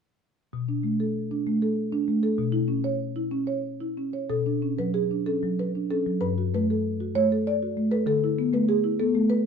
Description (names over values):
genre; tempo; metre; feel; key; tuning
classical, contemporary piece for solo marimba; 96 BPM; 3/4; rubato; B minor; A4 = 435 Hz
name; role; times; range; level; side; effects
marimba with soft mallets; solo; 0.5-9.5 s; G2 to D5; -23 LUFS; equal; none
room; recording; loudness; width
light reverb; dark, warm production; -23 LUFS; side -6 dB against mid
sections
0.5-4.3 A section; 4.3-9.5 B section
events
none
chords
0.5 Bm7; 2.4 C#m7/B; 4.3 Bmadd9; 6.2 Gmaj9; 8.1 Dsus2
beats
| 0.53 1.16 1.77 | 2.38 3.00 3.64 | 4.31 4.95 5.58 | 6.22 6.85 7.47 | 8.07 8.68 9.30